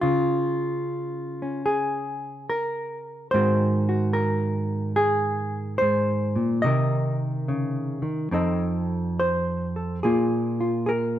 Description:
solo jazz; 72 BPM; 4/4; swing 66% on 8ths, rubato; Ab mixolydian; A4 = 440 Hz
hollow-body jazz guitar; solo; 0.0-11.2 s; F2 to Eb5; -22 LUFS; equal
moderate stone room reverb, RT60 1.3 s; band playing live in one room; -22 LUFS; side -11 dB against mid
0.0-11.2 A section
0.0 Db; 3.3 Ab7; 6.6 Cm7; 8.3 F7; 10.0 Bb7(no3)

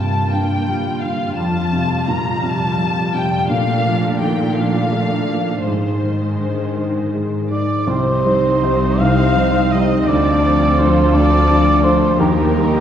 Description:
cinematic, emotional film score for orchestra; 55 BPM (dotted quarters); 6/8; uneven beats, rubato; A4 = 440 Hz
muted studio violin section; melody; 0.0-12.8 s; G4 to Bb5; -24 LUFS; left 2 dB
clear baby grand piano; accompaniment; 0.0-12.8 s; C2 to C5; -19 LUFS; left 1 dB
muted symphonic viola section; accompaniment; 0.0-12.8 s; Eb3 to F4; -24 LUFS; right 1 dB
muted studio cello section; bass; 0.0-12.8 s; C2 to Bb2; -22 LUFS; equal
dark cor anglais; second line; 7.5-12.8 s; Bb4 to F5; -19 LUFS; right 2 dB
muted studio violin section; second line; 7.5-12.8 s; Bb4 to F5; -24 LUFS; left 2 dB
muted studio double bass section; bass; 7.9-12.8 s; C2 to Eb2; -21 LUFS; right 2 dB
wet concert hall reverb, RT60 2.2 s; heard from further back in the room; -14 LUFS; side -9 dB against mid
0.0-7.9 A section; 7.9-12.8 B section
0.0 Gm7; 1.4 Fadd9; 3.5 Bbmaj7; 5.7 Ab; 7.9 Cm; 10.1 Dm7; 12.2 Eb

